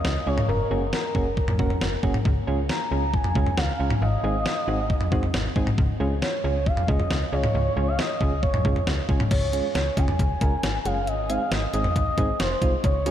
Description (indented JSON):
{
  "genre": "synth-pop",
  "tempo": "136 BPM",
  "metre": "4/4",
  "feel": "straight",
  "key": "Db major",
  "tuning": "A4 = 440 Hz",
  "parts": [
    { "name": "expressive synth lead", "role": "melody", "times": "0.0-13.1 s", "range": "Bb4 to Bb5", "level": "-28 LUFS", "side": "equal", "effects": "chorus, diffuse ambient delay" },
    { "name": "slap-like FM bass", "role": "bass", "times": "0.0-13.1 s", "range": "F1 to Db2", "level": "-27 LUFS", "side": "equal", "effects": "none" },
    { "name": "detuned 8-bit digital drum machine", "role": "drums", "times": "0.0-13.1 s", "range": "cowbell, crash cymbal, hi-hat, kick drum, snare drum, toms", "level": "-25 LUFS", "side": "equal", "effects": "none" },
    { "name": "soft electric-piano-like synth keys", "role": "accompaniment", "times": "0.3-13.1 s", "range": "Ab3 to Bb4", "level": "-30 LUFS", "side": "right 2 dB", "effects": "chorus, tremolo" }
  ],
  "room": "moderate cathedral reverb, RT60 5.4 s",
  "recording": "dreamy mix soaked in reverb",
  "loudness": "-21 LUFS",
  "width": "side -10 dB against mid",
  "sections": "0.0-9.3 A section; 9.3-13.1 B section",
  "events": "none",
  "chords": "0.5 Gbadd9; 2.3 Db; 4.0 Ab; 5.8 Db; 11.1 Ab"
}